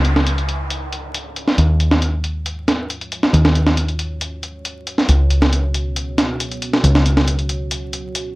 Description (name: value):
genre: breakbeat, breaks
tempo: 137 BPM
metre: 4/4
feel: straight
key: Db mixolydian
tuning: A4 = 439 Hz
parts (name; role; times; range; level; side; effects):
- dark analog pad; sustained chords; 1.3-8.4 s; Ab3 to Db5; -33 LUFS; right 2 dB; chorus, phaser
- overdriven picked electric bass; bass; 0.0-8.4 s; Db2 to Eb2; -17 LUFS; equal; tube saturation, low-pass filter
- breakbeat sampler-style drum kit; drums; 0.0-8.3 s; hi-hat, snare drum; -18 LUFS; equal; low-pass filter on kick, small room ambience, low-pass filter on hats, low-pass filter on snare
- downlifter; sound effects; 0.0-1.6 s; none; -29 LUFS; equal; none
room: little or no reverb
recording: vinyl crackle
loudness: -16 LUFS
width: side -21 dB against mid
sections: 0.0-8.4 A section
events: filter sweep on analog synth pad 0.0-8.4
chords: 0.0 Db7sus4; 1.6 Ebm11; 5.1 Db7sus4